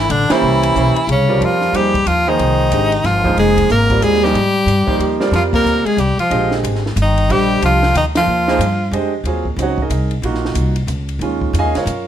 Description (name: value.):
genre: modal jazz.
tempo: 184 BPM.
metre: 3/4.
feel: swing 62% on 8ths.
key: F dorian.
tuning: A4 = 440 Hz.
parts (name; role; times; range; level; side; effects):
edgy tenor saxophone; melody; 0.0-8.9 s; Db4 to Bb4; -16 LUFS; right 1 dB; none.
breathy bass clarinet; second line; 0.0-8.9 s; Db3 to Bb3; -20 LUFS; left 4 dB; none.
upright bass; bass; 0.0-12.1 s; F1 to Ab2; -18 LUFS; equal; none.
compact cocktail drum kit; drums; 0.1-12.0 s; crash cymbal, hi-hat, kick drum, ride cymbal, snare drum; -26 LUFS; equal; none.
clear concert grand piano; accompaniment; 0.3-12.1 s; Db3 to Ab5; -19 LUFS; right 4 dB; none.
room: light reverb.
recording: none.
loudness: -13 LUFS.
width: side -10 dB against mid.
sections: 0.0-1.4 A section; 1.4-9.3 B section; 9.3-12.1 C section.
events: band accent 0.3, 5.5, 8.1.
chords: 0.4 C7b9; 1.4 Fm11; 5.3 Ebadd9; 9.3 Ebm11.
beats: 0.10 | 0.43 0.76 1.08 | 1.41 1.74 2.06 | 2.39 2.72 3.04 | 3.37 3.70 4.03 | 4.35 4.68 5.00 | 5.33 5.66 5.99 | 6.31 6.64 6.96 | 7.29 7.62 7.95 | 8.27 8.60 8.93 | 9.25 9.58 9.91 | 10.23 10.56 10.89 | 11.21 11.54 11.87.